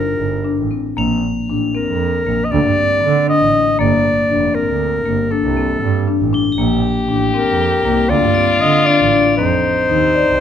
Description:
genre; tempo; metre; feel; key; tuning
contemporary instrumental, chamber music in an uneven meter; 235 BPM (eighths); 11/8; straight; G minor; A4 = 438 Hz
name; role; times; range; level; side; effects
warm clarinet; melody; 0.0-10.4 s; A4 to Eb5; -17 LUFS; left 1 dB; none
marimba with medium mallets; arpeggios; 0.0-10.4 s; Bb3 to D5; -19 LUFS; left 6 dB; none
clear double bass; bass; 0.0-10.4 s; F1 to D3; -19 LUFS; right 7 dB; none
crotales; texture; 1.0-9.7 s; D7 to Bb7; -26 LUFS; left 4 dB; none
stopped French horn; second line; 6.6-10.4 s; Eb4 to G4; -19 LUFS; left 5 dB; none
room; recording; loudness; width
moderate recital hall reverb, RT60 1.8 s; close, detailed microphones; -13 LUFS; side -9 dB against mid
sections
1.0-10.4 A section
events
none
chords
0.0 Gmadd9; 1.0 Bbmaj7sus2; 2.5 D5; 3.8 Gm9; 6.6 Bbmaj7sus2; 8.1 Dm7; 9.4 F7(no3)

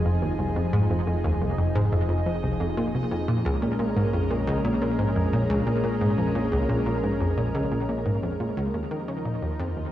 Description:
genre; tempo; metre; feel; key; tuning
ambient, sequencer-driven space music; 88 BPM; 4/4; straight; Bb minor; A4 = 440 Hz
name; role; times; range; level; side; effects
lush unison pad; sustained chords; 0.0-9.9 s; F3 to Bb4; -29 LUFS; equal; chorus, shimmer reverb
fat analog bass; bass; 0.0-9.9 s; F1 to Eb2; -32 LUFS; equal; none
bubbling stepped-filter texture; texture; 0.0-9.9 s; Eb5; -41 LUFS; right 3 dB; chorus, built-in reverb, shimmer reverb
analog pluck; riff; 0.1-9.8 s; C2 to Eb3; -25 LUFS; equal; chorus, cassette tape, tape echo
room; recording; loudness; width
wet spring reverb, RT60 1.3 s; home recording on cassette; -23 LUFS; side -12 dB against mid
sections
0.0-9.9 A section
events
fade-in on synth texture 0.0-9.9; fade-out 6.9-9.9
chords
0.0 Fm7; 3.3 Bbm7; 8.7 Ebsus2

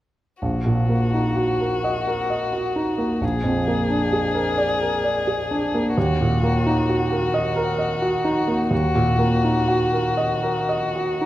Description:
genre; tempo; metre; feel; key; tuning
classical, slow romantic movement for piano trio; 43 BPM (dotted quarters); 6/8; uneven beats, rubato; Eb minor; A4 = 440 Hz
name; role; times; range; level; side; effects
warm violin; melody; 0.4-11.3 s; Gb4 to Ab4; -25 LUFS; left 4 dB; none
warm grand piano; accompaniment; 0.4-11.3 s; Bb1 to Eb5; -20 LUFS; right 1 dB; none
room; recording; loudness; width
moderate recital hall reverb, RT60 1.2 s; none; -19 LUFS; side -14 dB against mid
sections
0.4-11.3 A section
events
none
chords
0.4 Ebm/Bb; 3.2 Bb7; 6.0 Ebm

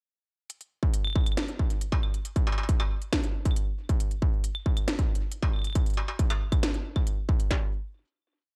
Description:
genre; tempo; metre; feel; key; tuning
IDM; 137 BPM; 4/4; straight; none; none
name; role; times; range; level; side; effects
industrial drum kit; drums; 0.5-7.5 s; claves, hi-hat, snare drum, struck metal; -35 LUFS; equal; studio ambience
industrial drum kit; drums; 0.8-7.6 s; kick drum, snare drum; -28 LUFS; equal; distortion, studio ambience
room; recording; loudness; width
digital ambience; dark, warm production; -28 LUFS; mono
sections
0.5-7.5 chorus; 7.5-8.6 final hit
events
none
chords
none

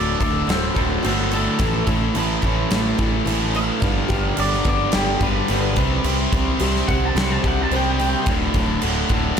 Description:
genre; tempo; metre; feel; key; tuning
quiet-loud alternative rock; 108 BPM; 4/4; straight; D major; A4 = 442 Hz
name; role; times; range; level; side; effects
electric guitar through a small old amp; melody; 0.0-8.3 s; G4 to A5; -25 LUFS; equal; phaser, slapback echo
picked old ladder-braced acoustic guitar; arpeggios; 0.0-8.3 s; D2 to C5; -29 LUFS; equal; none
cranked stack guitar; riff; 0.0-9.4 s; D2 to C4; -25 LUFS; right 11 dB; overdrive
distorted electric guitar; riff; 0.0-9.4 s; D2 to C4; -25 LUFS; left 13 dB; overdrive
picked electric bass; bass; 0.0-9.3 s; D1 to C2; -24 LUFS; equal; none
huge arena drum kit; drums; 0.2-9.4 s; crash cymbal, kick drum, snare drum; -23 LUFS; equal; none
room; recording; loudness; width
light reverb; none; -17 LUFS; side -7 dB against mid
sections
0.0-9.4 A section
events
clean electric guitar solo 0.0-9.4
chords
0.0 D; 1.6 A; 3.8 G; 5.8 C5; 8.3 D5

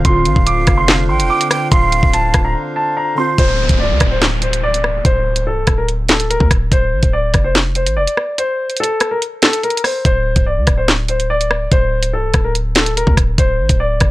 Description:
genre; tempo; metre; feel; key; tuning
hip hop, drill; 144 BPM; 4/4; half-time; unclear; A4 = 440 Hz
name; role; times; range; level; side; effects
warbly lo-fi synth keys; accompaniment; 0.0-3.4 s; D3 to F4; -21 LUFS; equal; chorus, low-pass filter
hand-pumped harmonium; sustained chords; 0.0-3.4 s; D3 to F5; -26 LUFS; equal; none
hard-hitting 808-style bass; bass; 0.0-14.1 s; C1 to D2; -18 LUFS; equal; none
warm concert grand piano; melody; 0.1-14.1 s; A4 to D6; -18 LUFS; equal; low-pass filter
drill drum kit; drums; 0.1-14.1 s; handclaps, hi-hat, kick drum, rim click, snare drum; -14 LUFS; equal; none
breathy jazz flute; second line; 0.3-3.4 s; C5 to G5; -22 LUFS; right 3 dB; tape echo
downlifter; sound effects; 3.4-6.7 s; none; -24 LUFS; equal; none
room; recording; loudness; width
small room ambience; dry, gritty hardware recording, cassette tape; -12 LUFS; side -17 dB against mid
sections
0.0-3.4 A section; 3.4-14.1 B section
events
break 2.5-3.4; kick muted 8.4-10.1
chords
0.0 Dm7; 3.4 Bbadd9/C (rootless); 6.7 Dm7; 10.1 Bbadd9/C (rootless); 13.4 Dm7

